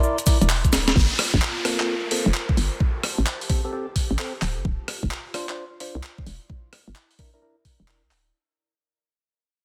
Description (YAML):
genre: UK garage, two-step garage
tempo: 130 BPM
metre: 4/4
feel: swing 65% on 16ths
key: G dorian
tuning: A4 = 438 Hz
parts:
  - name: percussive organ stab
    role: stabs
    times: 0.0-8.0 s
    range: Bb3 to D5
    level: -33 LUFS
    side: equal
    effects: subtle chorus, dub echo
  - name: breakbeat sampler-style drum kit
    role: drums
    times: 0.0-8.2 s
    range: handclaps, hi-hat, rim click, shaker, snare drum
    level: -28 LUFS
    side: equal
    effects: studio reverb
  - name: electronic kick drum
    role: drums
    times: 0.3-7.8 s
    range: none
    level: -24 LUFS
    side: equal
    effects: studio reverb
  - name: hollow knocking FM bass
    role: bass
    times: 0.4-8.3 s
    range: D1 to C2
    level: -26 LUFS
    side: equal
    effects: none
  - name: downlifter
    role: sound effects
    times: 1.0-4.6 s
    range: none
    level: -33 LUFS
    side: equal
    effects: none
  - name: airy breathy pad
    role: texture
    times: 1.2-8.3 s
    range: E4 to C6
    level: -38 LUFS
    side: equal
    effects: chorus, sidechain pumping
room: light reverb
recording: dense, heavily limited modern master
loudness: -23 LUFS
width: mono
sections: 1.0-8.3 A section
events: drum fill 0.7; fade-out on analog synth pad 1.0-8.3; fade-out 1.0-8.3; filter sweep on synth stab 1.0-8.3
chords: 0.0 C9/E (rootless); 1.0 Gm11; 2.8 Am7; 4.4 Dm7; 6.3 C9/E